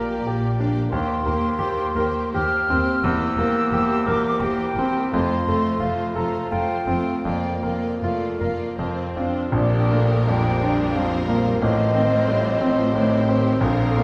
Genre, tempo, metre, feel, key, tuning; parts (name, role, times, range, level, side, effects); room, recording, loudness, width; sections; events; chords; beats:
classical, romantic movement for piano and orchestra; 77-92 BPM; 3/4; rubato; Bb major; A4 = 440 Hz
bright concert grand piano; melody; 0.0-14.0 s; A1 to Bb4; -25 LUFS; equal
rich studio violin section; melody; 0.0-14.0 s; F4 to D5; -39 LUFS; equal
mellow hollow silver concert flute; second line; 0.0-14.0 s; D5 to F6; -28 LUFS; equal
warm studio violin section; second line; 0.0-14.0 s; D4 to C5; -36 LUFS; equal
rich studio viola section; accompaniment; 0.0-14.0 s; D3 to D4; -31 LUFS; equal
rich studio cello section; bass; 0.0-14.0 s; Eb2 to Bb2; -31 LUFS; equal
rich studio double bass section; bass; 0.0-14.0 s; E1 to Eb2; -32 LUFS; equal
wet scoring stage reverb, RT60 1.8 s; heard from further back in the room; -22 LUFS; mono
0.0-9.5 A section; 9.5-14.0 B section
0.0 Gm/Bb; 0.9 Cm7/Eb; 3.0 C7/E; 5.1 F; 7.3 Bb/F; 8.8 F5; 9.5 Bb; 11.6 F7/A
0.25 | 0.92 1.59 2.34 | 3.04 3.73 4.42 | 5.13 5.82 6.52 | 7.26 8.02 8.79 | 9.53 10.28 10.96 | 11.62 12.29 12.96 | 13.62